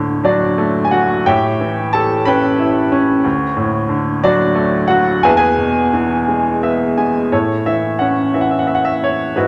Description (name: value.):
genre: classical, lyrical solo piano.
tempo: 59 BPM (dotted quarters).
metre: 6/8.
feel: uneven beats, rubato.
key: A major.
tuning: A4 = 439 Hz.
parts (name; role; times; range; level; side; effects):
bright baby grand piano; solo; 0.0-9.5 s; D2 to B5; -15 LUFS; equal; none.
room: wet recital hall reverb, RT60 1.5 s.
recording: none.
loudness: -15 LUFS.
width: mono.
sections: 0.0-7.3 A section; 7.3-9.5 B section.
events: grand piano fill 6.3-7.3.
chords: 0.0 D; 1.3 A7; 3.3 D; 5.2 E; 7.3 A.